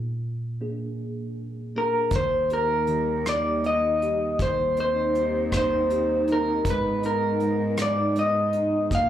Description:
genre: acoustic folk-pop ballad.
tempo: 53 BPM (dotted quarters).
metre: 6/8.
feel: straight.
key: Eb major.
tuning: A4 = 440 Hz.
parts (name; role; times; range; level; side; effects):
mellow tine electric piano; accompaniment; 0.0-9.1 s; Bb2 to Ab4; -30 LUFS; right 1 dB; ensemble chorus.
electric guitar through a small old amp; melody; 1.8-9.1 s; Bb4 to F5; -23 LUFS; left 1 dB; harmonic tremolo, slapback echo.
phased analog pad; sustained chords; 2.1-9.1 s; D3 to G4; -34 LUFS; right 2 dB; phaser, chorus.
warm cello; bass; 2.1-9.1 s; Eb2 to Bb2; -30 LUFS; right 1 dB; none.
soft brush drum kit; drums; 2.1-9.1 s; hi-hat, kick drum, rim click; -29 LUFS; equal; none.
room: moderate club reverb, RT60 0.7 s.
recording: live gig heard through the venue's PA, club reverb.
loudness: -22 LUFS.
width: side -11 dB against mid.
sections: 0.0-2.1 A section; 2.1-9.1 B section.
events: none.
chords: 0.0 Bb7; 2.1 Eb; 4.4 Cm/Eb; 6.7 Abm.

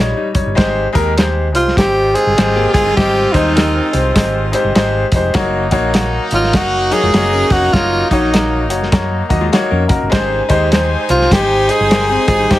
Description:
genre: uptempo 1960s-style soul.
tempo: 101 BPM.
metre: 4/4.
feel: swing 62% on 8ths.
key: Ab major.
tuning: A4 = 440 Hz.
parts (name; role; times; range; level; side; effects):
clear grand piano; accompaniment; 0.0-12.6 s; G3 to Eb5; -18 LUFS; left 2 dB; tube saturation.
hollow-body jazz guitar; riff; 0.0-12.6 s; Gb3 to Bb4; -23 LUFS; left 4 dB; none.
hollow-body short-scale fingered electric bass; bass; 0.0-12.6 s; F1 to Gb2; -19 LUFS; equal; none.
warm soul drum kit; drums; 0.3-12.6 s; hi-hat, kick drum, snare drum; -15 LUFS; equal; none.
breathy tenor saxophone; melody; 1.6-12.6 s; Eb4 to Ab4; -14 LUFS; equal; none.
clear horn section; second line; 1.8-12.6 s; Eb3 to Ab5; -21 LUFS; equal; none.
room: light reverb.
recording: heavily compressed radio sound.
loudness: -11 LUFS.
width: side -15 dB against mid.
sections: 0.6-12.6 A section.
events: none.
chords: 0.0 Eb; 0.6 Abmaj7; 5.4 Ebm7; 10.1 Abmaj7.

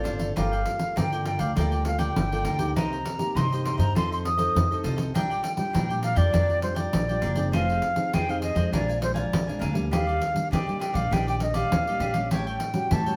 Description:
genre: samba and choro.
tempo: 100 BPM.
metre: 4/4.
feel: straight.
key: G minor.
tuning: A4 = 440 Hz.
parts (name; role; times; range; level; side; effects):
concert flute; melody; 0.0-13.2 s; C5 to Eb6; -31 LUFS; equal; none.
cavaquinho; accompaniment; 0.0-13.2 s; D4 to Ab5; -37 LUFS; equal; none.
nylon-string guitar; accompaniment; 0.0-13.2 s; F2 to A4; -34 LUFS; equal; none.
upright bass; bass; 0.0-13.2 s; F1 to Eb3; -30 LUFS; equal; none.
pandeiro; percussion; 0.1-13.2 s; none; -32 LUFS; equal; none.
room: wet studio reverb, RT60 0.7 s.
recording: heard from further back in the room.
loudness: -25 LUFS.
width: mono.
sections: 0.4-13.2 A section.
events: none.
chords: 0.4 Gm9; 2.8 Cm7; 4.0 F7; 5.1 Bb6; 7.5 Fm7; 8.7 Bb7; 9.9 Ebmaj7; 12.3 A6.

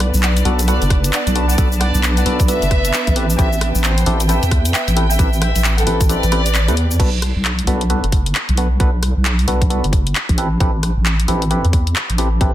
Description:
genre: UK garage, two-step garage.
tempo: 133 BPM.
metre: 4/4.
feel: swing 62% on 16ths.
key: unclear.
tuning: A4 = 441 Hz.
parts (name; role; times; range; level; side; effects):
warm analog pad; sustained chords; 0.0-7.0 s; B3 to B4; -30 LUFS; right 1 dB; chorus, sidechain pumping.
deep soft wobble bass; bass; 0.0-12.5 s; F#1 to E2; -16 LUFS; equal; chorus.
garage drum kit; drums; 0.0-12.5 s; cabasa, crash cymbal, handclaps, hi-hat, rim click; -22 LUFS; left 1 dB; none.
dark studio string section; texture; 0.0-7.0 s; D4 to A5; -28 LUFS; right 1 dB; sidechain pumping.
warm studio violin section; melody; 0.2-6.9 s; A4 to A5; -23 LUFS; equal; tape echo.
percussive organ stab; stabs; 0.5-12.5 s; B3 to B4; -23 LUFS; equal; chorus, digital delay.
electronic kick drum; drums; 0.9-12.5 s; none; -16 LUFS; equal; none.
room: digital ambience.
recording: dense, heavily limited modern master.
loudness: -14 LUFS.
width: side -13 dB against mid.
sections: 0.0-7.0 A section; 7.0-12.5 B section.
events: drop 0.0-7.0; kick drops out 6.1-7.0.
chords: 0.0 Bm7; 3.2 Am9; 7.0 Bm7; 10.4 Am9.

